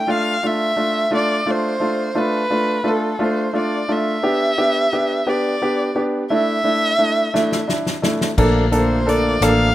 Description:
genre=six-eight pop ballad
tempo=58 BPM (dotted quarters)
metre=6/8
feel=straight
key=F lydian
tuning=A4 = 441 Hz
part: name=dark violin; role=melody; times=0.0-9.7 s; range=A4 to G5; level=-20 LUFS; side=equal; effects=none
part: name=bright concert grand piano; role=accompaniment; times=0.1-9.7 s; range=A3 to A4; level=-19 LUFS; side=equal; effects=none
part: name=natural country drum kit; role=drums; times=7.4-9.6 s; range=crash cymbal, hi-hat, kick drum, rim click, snare drum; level=-23 LUFS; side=left 1 dB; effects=none
part: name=tonewheel organ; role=sustained chords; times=8.4-9.7 s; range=D3 to Bb3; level=-23 LUFS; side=equal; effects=overdrive, fast rotary speaker
part: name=vintage muted fingered electric bass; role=bass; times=8.4-9.7 s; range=A1 to Bb1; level=-20 LUFS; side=equal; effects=none
room=little or no reverb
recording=rough home demo mix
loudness=-16 LUFS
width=side -14 dB against mid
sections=0.0-8.4 A section; 8.4-9.7 B section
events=drum fill 7.3-8.4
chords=0.1 F6; 4.2 G; 6.3 Dsus2; 8.4 Bbmaj7

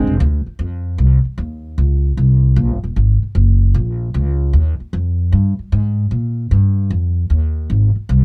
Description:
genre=jazz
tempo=152 BPM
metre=4/4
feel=swing 67% on 8ths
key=Eb major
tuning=A4 = 440 Hz
part: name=upright bass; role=bass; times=0.0-8.2 s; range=Eb1 to Bb2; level=-13 LUFS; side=equal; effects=none
room=little or no reverb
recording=dry, close 1970s-style studio recording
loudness=-13 LUFS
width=side -35 dB against mid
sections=0.0-1.4 A section; 1.4-8.2 B section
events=none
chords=none

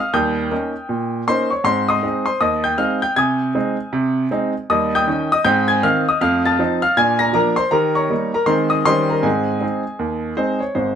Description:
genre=jazz, stride piano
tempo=158 BPM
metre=4/4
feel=swing 63% on 8ths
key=Ab major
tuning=A4 = 441 Hz
part: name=clear grand piano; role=solo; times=0.0-11.0 s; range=Ab1 to Bb6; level=-16 LUFS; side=equal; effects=none
room=moderate studio reverb, RT60 0.6 s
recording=none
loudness=-16 LUFS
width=side -8 dB against mid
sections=0.0-10.8 A section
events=none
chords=0.1 Eb7; 1.7 Ab; 3.2 Ab/C; 4.7 Eb7; 5.5 Ab; 6.2 F7; 7.0 Bb7; 7.7 Eb7; 8.5 Ab/Eb; 8.9 Eb7; 9.2 Ab

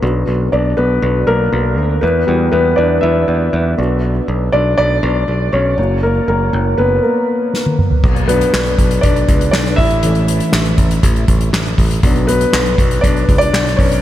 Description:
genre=piano-driven pop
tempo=120 BPM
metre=4/4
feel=straight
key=B harmonic minor, B minor from 8.0 s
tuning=A4 = 440 Hz
part: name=warm concert grand piano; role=accompaniment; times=0.0-14.0 s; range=E3 to E5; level=-15 LUFS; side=left 1 dB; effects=none
part: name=modern bright picked electric bass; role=bass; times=0.0-14.0 s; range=F#1 to E2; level=-16 LUFS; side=equal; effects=none
part: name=soft-mallet drum kit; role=drums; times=7.5-14.0 s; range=crash cymbal, handclaps, hi-hat, kick drum, snare drum, toms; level=-14 LUFS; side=equal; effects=none
room=moderate huge ambient reverb, RT60 7.9 s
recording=dreamy mix soaked in reverb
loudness=-12 LUFS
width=side -12 dB against mid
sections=0.0-8.0 A section; 8.0-14.0 B section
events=grand piano solo 0.0-8.0, 8.0-14.0; drum fill 7.5-8.0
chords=0.0 Bm; 2.0 Emadd9; 3.8 Bm; 5.8 F#; 8.0 Bm; 9.8 A; 12.0 Bm

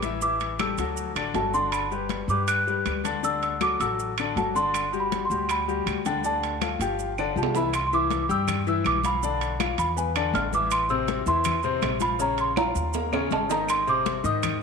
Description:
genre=Afro-Cuban jazz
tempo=161 BPM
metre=4/4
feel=straight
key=G major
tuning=A4 = 440 Hz
part: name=clear grand piano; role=accompaniment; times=0.0-14.5 s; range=C3 to B5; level=-28 LUFS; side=left 10 dB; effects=none
part: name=upright bass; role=bass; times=0.0-14.6 s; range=G1 to Ab2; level=-32 LUFS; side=right 1 dB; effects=none
part: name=congas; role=percussion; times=0.0-14.6 s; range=none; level=-35 LUFS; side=left 11 dB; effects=none
part: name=maracas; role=percussion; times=0.0-14.6 s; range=none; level=-40 LUFS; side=right 16 dB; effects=none
part: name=timbales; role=percussion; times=0.0-14.6 s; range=none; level=-33 LUFS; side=right 14 dB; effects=none
part: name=small celesta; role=melody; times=0.2-14.6 s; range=G5 to F#6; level=-26 LUFS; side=right 2 dB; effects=none
part: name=claves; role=percussion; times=0.6-14.6 s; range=none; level=-36 LUFS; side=right 2 dB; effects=none
room=moderate echo chamber reverb, RT60 2.5 s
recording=1960s-style stereo with parts hard left and right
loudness=-23 LUFS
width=side -5 dB against mid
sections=0.0-7.7 A section; 7.7-14.6 B section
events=drum fill 7.2-7.7, 12.6-13.7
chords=0.2 A5; 1.0 Dadd9; 1.7 G; 3.2 Dadd9; 4.7 Gmaj7; 6.2 Dm; 7.0 G5; 7.7 C; 9.2 Bdim; 10.0 E7; 10.7 Am; 12.2 Bbm; 12.9 Eb5; 13.7 Ab

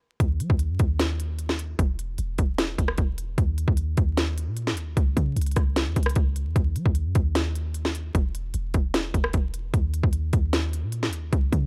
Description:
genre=hip hop, trap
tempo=151 BPM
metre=4/4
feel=half-time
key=Eb phrygian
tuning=A4 = 440 Hz
part: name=clean 808-style bass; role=bass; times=0.2-11.7 s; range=Fb1 to Gb3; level=-28 LUFS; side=equal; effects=none
part: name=trap drum kit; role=drums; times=0.2-11.6 s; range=hi-hat, kick drum, rim click, snare drum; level=-26 LUFS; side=equal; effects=none
room=little or no reverb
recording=vinyl crackle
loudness=-25 LUFS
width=mono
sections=0.2-11.7 A section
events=break 0.0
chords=none

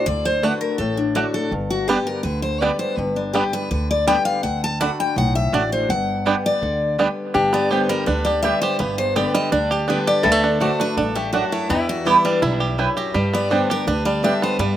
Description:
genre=bluegrass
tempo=165 BPM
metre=4/4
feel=straight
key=G major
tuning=A4 = 444 Hz
part: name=picked steel-string acoustic guitar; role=melody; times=0.0-14.8 s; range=D4 to B5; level=-22 LUFS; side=left 2 dB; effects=none
part: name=picked steel-string acoustic guitar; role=accompaniment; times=0.0-14.8 s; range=E2 to G4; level=-25 LUFS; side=left 2 dB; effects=slapback echo
part: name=upright bass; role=bass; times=0.1-14.8 s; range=G1 to G2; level=-26 LUFS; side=equal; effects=none
part: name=bluegrass banjo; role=melody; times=0.4-14.8 s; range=G3 to G4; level=-23 LUFS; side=right 5 dB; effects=none
part: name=mandolin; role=stabs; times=0.4-14.3 s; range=A3 to G5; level=-22 LUFS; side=right 5 dB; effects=none
part: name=lap resonator guitar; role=second line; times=7.3-14.8 s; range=E4 to A4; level=-25 LUFS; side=left 2 dB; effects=slapback echo
room=little or no reverb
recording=recorded outdoors, with no room sound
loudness=-18 LUFS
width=side -11 dB against mid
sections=0.0-7.3 A section; 7.3-14.8 B section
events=none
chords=0.0 D; 1.5 G; 4.4 D; 5.9 G; 10.3 D; 11.7 Em; 13.1 G

